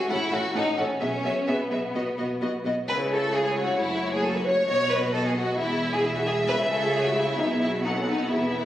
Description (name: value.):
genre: quick classical-period movement for string orchestra.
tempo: 132 BPM.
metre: 4/4.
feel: rubato.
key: E major.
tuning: A4 = 439 Hz.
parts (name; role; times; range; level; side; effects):
warm symphonic violin section; second line; 0.0-8.7 s; B3 to C#5; -26 LUFS; left 1 dB; none.
warm symphonic violin section; melody; 0.1-8.7 s; C#5 to F#5; -30 LUFS; left 1 dB; none.
rich symphonic viola section; accompaniment; 0.1-8.7 s; G#3 to A4; -30 LUFS; equal; none.
clear symphonic cello section; bass; 0.1-8.7 s; E2 to C#3; -31 LUFS; right 1 dB; none.
clear symphonic double bass section; bass; 0.1-8.7 s; E1 to C#2; -35 LUFS; right 1 dB; none.
room: wet recital hall reverb, RT60 1.3 s.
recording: recorded on a phone in the room, studio reverb, compression.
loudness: -23 LUFS.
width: side -12 dB against mid.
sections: 0.0-8.7 A section.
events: none.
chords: 0.1 F#m/A; 1.0 E/B; 1.9 B; 2.9 C#m; 3.8 F#m; 4.7 B; 5.6 E; 6.5 C#m; 7.4 E/B; 7.8 B7.